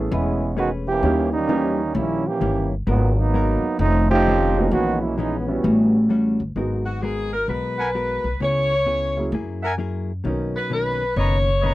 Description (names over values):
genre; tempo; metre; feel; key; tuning
jazz, big band swing; 130 BPM; 4/4; swing 65% on 8ths; G# minor; A4 = 440 Hz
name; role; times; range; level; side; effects
warm baby grand piano; accompaniment; 0.0-11.0 s; E3 to A#4; -26 LUFS; right 1 dB; none
upright bass; bass; 0.0-11.7 s; E1 to F#2; -22 LUFS; equal; none
warm trombone section; second line; 0.1-6.1 s; A#2 to G4; -22 LUFS; right 3 dB; none
hollow-body jazz guitar; accompaniment; 0.1-11.7 s; F2 to B4; -28 LUFS; left 4 dB; none
clear saxophone section; melody; 6.9-11.7 s; F#4 to C#5; -22 LUFS; left 1 dB; none
mellow trumpet section; stabs; 7.8-11.7 s; A#4 to A#5; -24 LUFS; equal; none
room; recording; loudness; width
little or no reverb; dry, close 1970s-style studio recording; -19 LUFS; side -16 dB against mid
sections
0.0-6.6 A section; 6.6-11.7 B section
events
trombone section solo 0.0-6.6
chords
0.0 Amaj9; 1.0 D#7b9; 2.9 G#m9; 3.8 F7b13; 4.7 A#m7b5; 5.6 A13; 6.6 G#m9; 8.4 C#m7; 9.3 F#9; 10.3 Bmaj9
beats
0.12 0.58 | 1.04 1.50 1.96 2.42 | 2.88 3.34 3.80 4.26 | 4.72 5.18 5.65 6.11 | 6.57 7.03 7.49 7.95 | 8.41 8.88 9.34 9.80 | 10.26 10.72 11.18 11.63